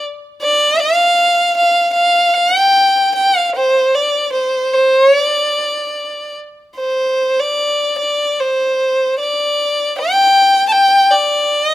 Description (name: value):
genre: japanese traditional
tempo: 75 BPM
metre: 4/4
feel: uneven beats, rubato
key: unclear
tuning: A4 = 440 Hz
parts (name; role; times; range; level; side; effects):
- clear violin; solo; 0.4-11.7 s; C5 to A5; -12 LUFS; equal; none
room: light reverb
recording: close, detailed microphones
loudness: -11 LUFS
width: side -14 dB against mid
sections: 0.0-11.7 A section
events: none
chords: none